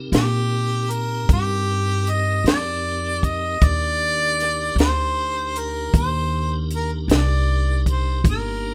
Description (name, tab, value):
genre	slow blues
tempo	52 BPM (dotted quarters)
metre	12/8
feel	straight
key	C minor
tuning	A4 = 441 Hz
part	tonewheel organ	sustained chords	0.0-8.7 s	Bb3 to Bb4	-35 LUFS	equal	slow rotary speaker, overdrive, chorus vibrato, plate reverb
part	upright bass	bass	0.0-8.7 s	G1 to Bb2	-25 LUFS	equal	none
part	warm harmonica	melody	0.1-8.7 s	G4 to Eb5	-26 LUFS	equal	none
part	compact cocktail drum kit	drums	0.1-8.4 s	hi-hat, kick drum, snare drum	-21 LUFS	equal	none
room	light reverb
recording	rough home demo mix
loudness	-21 LUFS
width	mono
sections	0.0-8.7 A section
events	none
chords	0.0 Cm7